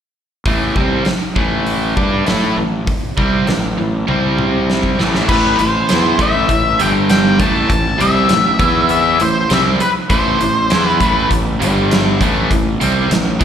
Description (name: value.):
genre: blues rock power trio and southern rock.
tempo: 100 BPM.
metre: 4/4.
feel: straight.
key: A minor.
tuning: A4 = 440 Hz.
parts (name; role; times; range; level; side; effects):
overdriven electric guitar; riff; 0.5-13.4 s; G2 to A4; -17 LUFS; right 1 dB; slapback echo.
fuzz fingered electric bass; bass; 0.5-13.4 s; G1 to A2; -18 LUFS; equal; overdrive.
big rock drum kit; drums; 0.5-13.4 s; crash cymbal, hi-hat, kick drum, snare drum, toms; -19 LUFS; equal; none.
octave-fuzz lead guitar; melody; 5.3-11.3 s; B4 to A5; -16 LUFS; left 2 dB; distortion, slapback echo.
room: light reverb, small room ambience.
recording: live gig heard through the venue's PA, club reverb.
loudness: -12 LUFS.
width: side -8 dB against mid.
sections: 0.5-5.3 A section; 5.3-13.4 B section.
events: drum fill 4.1-5.3.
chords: 0.5 Am7; 4.1 C5; 5.0 A5; 5.3 Am; 6.8 G5; 7.4 Am; 8.6 E5; 9.2 Am; 11.6 G5; 12.2 Am.